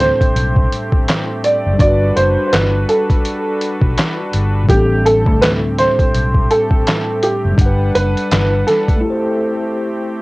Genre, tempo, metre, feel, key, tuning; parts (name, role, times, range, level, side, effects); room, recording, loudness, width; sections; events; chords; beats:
lo-fi hip hop; 83 BPM; 4/4; swing 60% on 16ths; A dorian; A4 = 440 Hz
warm upright piano; melody; 0.0-9.7 s; G4 to D5; -17 LUFS; right 1 dB; low-pass filter
tine electric piano; accompaniment; 0.0-10.2 s; A2 to F#5; -20 LUFS; left 1 dB; medium stereo tremolo, cassette tape, low-pass filter
pipe organ, strings celeste; sustained chords; 0.0-10.2 s; G3 to F#5; -27 LUFS; equal; low-pass filter, cassette tape
vintage muted fingered electric bass; bass; 0.0-8.6 s; F#1 to D2; -17 LUFS; equal; tube saturation
lo-fi sampler-style drum kit; drums; 0.0-9.0 s; handclaps, hi-hat, kick drum, snare drum; -16 LUFS; equal; cassette tape
light reverb; home recording on cassette; -12 LUFS; side -22 dB against mid
0.0-10.2 A section
break 9.0-10.2
0.0 Am11; 1.8 Gmaj7; 4.7 Am11; 7.6 Gmaj7; 9.0 Am7
0.35 1.07 | 1.80 2.52 3.24 3.96 | 4.69 5.41 6.13 6.86 | 7.58 8.30 9.03 9.75